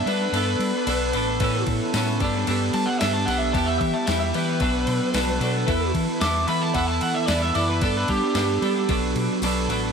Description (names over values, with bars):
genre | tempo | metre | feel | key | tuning
indie rock | 112 BPM | 4/4 | straight | unclear | A4 = 440 Hz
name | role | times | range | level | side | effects
lead guitar through a small cranked amp | melody | 0.0-8.9 s | G4 to D6 | -27 LUFS | equal | overdrive, dub echo
twelve-string electric guitar | riff | 0.0-9.9 s | E3 to A4 | -24 LUFS | right 1 dB | double-tracked left and right, dub echo
fingered electric bass | bass | 0.0-9.9 s | A1 to G3 | -27 LUFS | left 1 dB | none
crisp 8-bit digital drum machine | drums | 0.1-9.8 s | crash cymbal, kick drum, snare drum | -29 LUFS | equal | overdrive
tambourine | percussion | 1.9-9.5 s | none | -39 LUFS | left 16 dB | none
room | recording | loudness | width
light reverb, digital ambience | echo-heavy mix | -20 LUFS | side -6 dB against mid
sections
0.0-9.9 A section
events
lead electric guitar solo 0.0-9.9; kick and snare drop out 0.3-1.4, 9.4-9.9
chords
0.0 Gadd9; 1.4 Aadd9; 2.2 Gadd9; 3.5 Em; 4.6 Bm7; 5.7 Esus4; 7.8 Gadd9; 8.9 Bm7